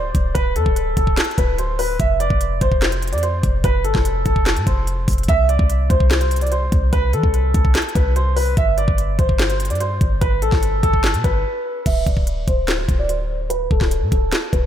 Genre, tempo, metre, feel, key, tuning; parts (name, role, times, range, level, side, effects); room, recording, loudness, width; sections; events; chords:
hip hop, trap; 146 BPM; 4/4; half-time; D dorian; A4 = 439 Hz
dark concert grand piano; melody; 0.0-14.7 s; A4 to E5; -22 LUFS; equal; wide subtle chorus, low-pass filter, ping-pong delay
clean 808-style bass; bass; 0.0-14.7 s; D1 to E3; -20 LUFS; equal
trap drum kit; drums; 0.1-14.6 s; crash cymbal, handclaps, hi-hat, kick drum, snare drum; -20 LUFS; equal
light reverb; -16 LUFS; side -10 dB against mid
0.0-11.9 A section; 11.9-14.7 B section
break 11.4-11.9; filter sweep on grand piano 11.9-14.7
0.0 D5; 2.0 F; 5.3 C5; 8.6 G; 11.9 D5